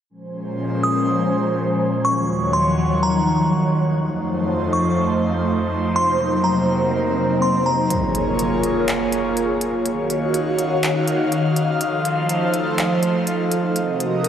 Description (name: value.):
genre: hip hop, atmospheric cloud-rap.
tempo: 123 BPM.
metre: 4/4.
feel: half-time.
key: Bb minor.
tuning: A4 = 441 Hz.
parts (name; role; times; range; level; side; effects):
airy breathy pad; sustained chords; 0.1-14.3 s; Eb2 to F5; -19 LUFS; equal; chorus, phaser.
wind-like tuned noise texture; texture; 0.4-14.3 s; A3 to Bb5; -31 LUFS; right 1 dB; built-in reverb, wide subtle chorus.
glassy synth bell; melody; 0.8-7.9 s; Bb5 to Eb6; -24 LUFS; right 1 dB; chorus, low-pass filter, diffuse ambient delay.
swell and impact; sound effects; 5.7-9.9 s; none; -29 LUFS; left 1 dB; none.
smooth R&B drum kit; drums; 7.9-14.3 s; handclaps, hi-hat; -28 LUFS; equal; none.
room: wet cathedral reverb, RT60 5.1 s.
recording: dreamy mix soaked in reverb.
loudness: -17 LUFS.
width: side -9 dB against mid.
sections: 0.1-7.9 A section; 7.9-14.3 B section.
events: swell 5.7-7.9; kick muted 7.9-14.3; impact 7.9-9.9.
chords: 0.1 Bbm7; 2.0 Ebm7; 4.0 F7; 6.0 Cm7b5; 7.9 Bbm7; 9.9 Ebm7; 11.8 F7; 13.8 Cm7b5.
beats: | 0.10 0.59 1.07 1.56 | 2.05 2.54 3.02 3.51 | 4.00 4.49 4.98 5.46 | 5.95 6.44 6.93 7.42 | 7.90 8.39 8.88 9.37 | 9.85 10.34 10.83 11.32 | 11.81 12.29 12.78 13.27 | 13.76 14.24.